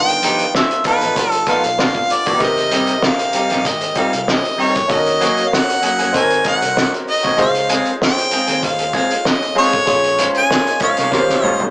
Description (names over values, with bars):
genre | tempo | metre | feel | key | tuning
lush 1970s-style soul | 96 BPM | 4/4 | swing 54% on 16ths | Ab major | A4 = 440 Hz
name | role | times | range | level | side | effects
clear harmonica | melody | 0.0-11.7 s | B4 to Ab5 | -17 LUFS | equal | none
clear grand piano | accompaniment | 0.0-11.7 s | C3 to Db5 | -21 LUFS | equal | none
warm French horn section | sustained chords | 0.0-11.7 s | C3 to C5 | -31 LUFS | equal | none
fingered electric bass | bass | 0.0-11.7 s | G1 to G2 | -34 LUFS | equal | none
cloth-damped thuddy drum kit | drums | 0.1-11.7 s | hi-hat, kick drum, snare drum, toms | -19 LUFS | equal | none
semi-hollow electric guitar | riff | 0.2-11.6 s | Eb3 to Db5 | -20 LUFS | equal | spring reverb
clear horn section | stabs | 0.9-2.2, 10.8-11.6 s | F3 to F4 | -23 LUFS | equal | none
celesta | texture | 1.2-6.3, 10.5-11.6 s | F4 to Eb5 | -32 LUFS | equal | none
room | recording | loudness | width
wet booth ambience, RT60 0.2 s | rough rehearsal-room recording, tube saturation, small speaker sound | -13 LUFS | side -22 dB against mid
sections
0.0-11.7 A section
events
band accent 0.0-2.4, 9.9-11.7; drum fill 11.1-11.7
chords
0.0 G7b13; 2.4 Abmaj7; 4.9 Ebm7; 6.1 Ab7; 7.4 Dbmaj7; 9.9 Bbm9; 11.1 Eb13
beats
0.54 1.17 1.79 | 2.41 3.03 3.65 4.27 | 4.89 5.52 6.14 6.76 | 7.38 8.00 8.63 9.25 | 9.87 10.49 11.12